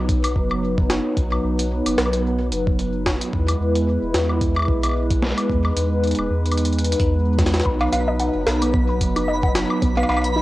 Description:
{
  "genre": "IDM",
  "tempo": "111 BPM",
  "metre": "4/4",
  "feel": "swing 56% on 16ths",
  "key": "B major",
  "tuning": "A4 = 437 Hz",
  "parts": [
    { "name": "hollow soft pad", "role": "sustained chords", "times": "0.0-10.4 s", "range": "F#3 to B4", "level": "-22 LUFS", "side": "equal", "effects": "chorus, cassette tape" },
    { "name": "round analog bass", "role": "bass", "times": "0.0-10.4 s", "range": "E1 to E2", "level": "-23 LUFS", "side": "equal", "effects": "none" },
    { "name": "electronic kick drum", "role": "drums", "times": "0.1-9.9 s", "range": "none", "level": "-22 LUFS", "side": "equal", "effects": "cassette tape" },
    { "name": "jungle sampler-style drum kit", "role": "drums", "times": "0.1-10.3 s", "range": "cowbell, hi-hat, snare drum, woodblock", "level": "-25 LUFS", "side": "equal", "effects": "cassette tape" },
    { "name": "warbly dusty pluck", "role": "arpeggios", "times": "7.7-10.4 s", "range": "B3 to B5", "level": "-26 LUFS", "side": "equal", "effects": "chorus, cassette tape, tape echo" },
    { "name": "twinkling granular texture", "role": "texture", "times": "7.9-10.4 s", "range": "B5", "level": "-30 LUFS", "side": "right 1 dB", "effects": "built-in reverb, cassette tape" }
  ],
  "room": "moderate spring reverb, RT60 1.6 s, digital ambience",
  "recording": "home recording on cassette",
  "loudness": "-18 LUFS",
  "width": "side -17 dB against mid",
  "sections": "0.0-10.4 A section",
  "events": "none",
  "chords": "0.0 B; 3.3 E; 7.7 B",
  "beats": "0.09 0.63 | 1.17 1.71 2.25 2.79 | 3.33 3.87 4.41 4.95 | 5.50 6.04 6.58 7.12 | 7.66 8.20 8.74 9.28 | 9.82 10.36"
}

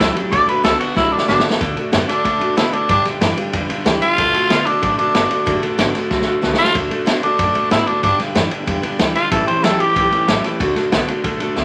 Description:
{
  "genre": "rockabilly",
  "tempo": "187 BPM",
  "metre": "4/4",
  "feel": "straight",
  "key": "D major",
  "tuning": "A4 = 441 Hz",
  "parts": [
    { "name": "raspy tenor saxophone", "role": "melody", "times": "0.0-10.4 s", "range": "D4 to D5", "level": "-19 LUFS", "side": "equal", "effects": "none" },
    { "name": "picked steel-string acoustic guitar", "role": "accompaniment", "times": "0.0-11.6 s", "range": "A2 to B4", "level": "-25 LUFS", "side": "equal", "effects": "none" },
    { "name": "electric guitar through a small old amp", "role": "riff", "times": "0.0-11.6 s", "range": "G2 to B3", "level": "-26 LUFS", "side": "equal", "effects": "none" },
    { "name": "upright bass", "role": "bass", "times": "0.0-11.6 s", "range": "F#1 to A2", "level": "-31 LUFS", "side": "equal", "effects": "none" },
    { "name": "vintage drum kit", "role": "drums", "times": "0.0-11.6 s", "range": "kick drum, ride cymbal, snare drum", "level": "-22 LUFS", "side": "equal", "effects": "none" }
  ],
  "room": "moderate large studio reverb, RT60 1.1 s",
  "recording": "vinyl crackle",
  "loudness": "-17 LUFS",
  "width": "mono",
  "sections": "0.0-1.6 A section; 1.6-11.6 B section",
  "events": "tenor saxophone solo 0.0-1.6; drum fill 1.0-1.6, 6.1-6.7",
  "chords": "0.3 D; 2.9 G; 4.2 D; 8.0 G; 9.3 A7; 10.6 D",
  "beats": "0.00 | 0.32 0.64 0.96 1.28 | 1.61 1.93 2.25 2.57 | 2.89 3.21 3.54 3.86 | 4.18 4.50 4.82 5.14 | 5.46 5.79 6.11 6.43 | 6.75 7.07 7.39 7.71 | 8.03 8.35 8.68 9.00 | 9.32 9.64 9.96 10.28 | 10.60 10.92 11.24 11.56"
}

